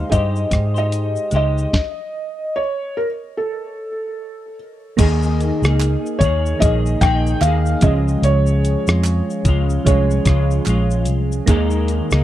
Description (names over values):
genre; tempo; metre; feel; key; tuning
indie pop, bedroom pop; 74 BPM; 4/4; swing 60% on 16ths; unclear; A4 = 440 Hz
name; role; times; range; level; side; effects
felt-muted upright piano; melody; 0.0-11.0 s; A4 to G5; -23 LUFS; equal; wide subtle chorus, tape echo
semi-hollow electric guitar; accompaniment; 0.0-12.2 s; Db3 to C5; -25 LUFS; left 4 dB; ensemble chorus, warbly pitch drift
soft electric-piano-like synth keys; accompaniment; 0.0-12.2 s; F3 to C5; -24 LUFS; right 4 dB; chorus
vintage muted fingered electric bass; bass; 0.0-12.2 s; Bb1 to Ab2; -18 LUFS; equal; none
dusty soul sampler-style drum kit; drums; 0.1-12.2 s; crash cymbal, hi-hat, kick drum, rim click, shaker, snare drum; -18 LUFS; equal; none
group handclap; percussion; 5.8-10.9 s; none; -30 LUFS; right 9 dB; none
room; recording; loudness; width
little or no reverb; dry, close 1970s-style studio recording; -15 LUFS; side -13 dB against mid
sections
0.0-5.0 A section; 5.0-12.2 B section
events
stop 1.7-5.0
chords
0.0 Abmaj7; 1.7 N.C.; 5.0 Ebsus4; 7.8 Dbmaj7; 11.5 Ebsus4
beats
0.10 0.92 | 1.73 2.55 3.36 4.17 | 4.98 5.80 6.61 7.42 | 8.23 9.04 9.86 10.67 | 11.48